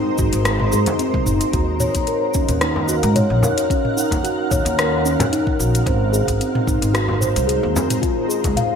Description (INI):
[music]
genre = organic downtempo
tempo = 111 BPM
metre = 4/4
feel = swing 53% on 16ths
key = Eb dorian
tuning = A4 = 440 Hz
[part]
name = granular cloud pad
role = sustained chords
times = 0.0-8.8 s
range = Ab3 to Gb5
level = -24 LUFS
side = equal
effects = built-in reverb, analog chorus, sidechain pumping
[part]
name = steel tongue drum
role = arpeggios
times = 0.0-8.7 s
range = C4 to F5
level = -21 LUFS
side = equal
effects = ping-pong delay
[part]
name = upright bass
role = bass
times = 0.2-8.5 s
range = Gb1 to Ab2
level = -21 LUFS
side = equal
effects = sidechain pumping
[part]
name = afro-pop drum kit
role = drums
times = 0.2-8.7 s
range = cabasa, hi-hat, rim click, toms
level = -24 LUFS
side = equal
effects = studio reverb, gated reverb
[part]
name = electronic kick drum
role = drums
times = 0.2-8.5 s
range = none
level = -23 LUFS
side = left 1 dB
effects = studio reverb
[part]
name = frame drum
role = percussion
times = 0.9-8.5 s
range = none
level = -28 LUFS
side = left 2 dB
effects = none
[sound]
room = moderate plate reverb, RT60 2.2 s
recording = bright 1980s-style digital production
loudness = -16 LUFS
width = side -7 dB against mid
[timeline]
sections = 0.0-8.8 A section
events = none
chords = 0.0 Ab7; 1.5 Ebm7; 5.9 Ab; 8.0 Db